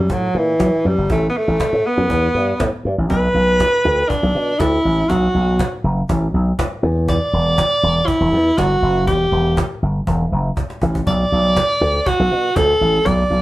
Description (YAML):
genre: disco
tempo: 120 BPM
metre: 4/4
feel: straight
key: B minor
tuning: A4 = 435 Hz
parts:
  - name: breathy tenor saxophone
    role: melody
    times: 0.0-13.4 s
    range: E3 to D5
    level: -17 LUFS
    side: equal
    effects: none
  - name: slap bass with an envelope filter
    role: bass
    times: 0.0-13.4 s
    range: E1 to F#3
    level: -18 LUFS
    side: equal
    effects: none
  - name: cajon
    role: drums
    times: 0.1-13.2 s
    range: none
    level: -23 LUFS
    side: equal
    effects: none
room: moderate studio reverb, RT60 0.7 s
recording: band playing live in one room, lossy compression artefacts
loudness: -14 LUFS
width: side -17 dB against mid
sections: 0.0-3.1 A section; 3.1-13.4 B section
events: drum fill 10.6-11.1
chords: 0.0 F#7b9; 1.1 Asus2; 3.1 B5; 6.8 E7(no3); 11.1 Bm7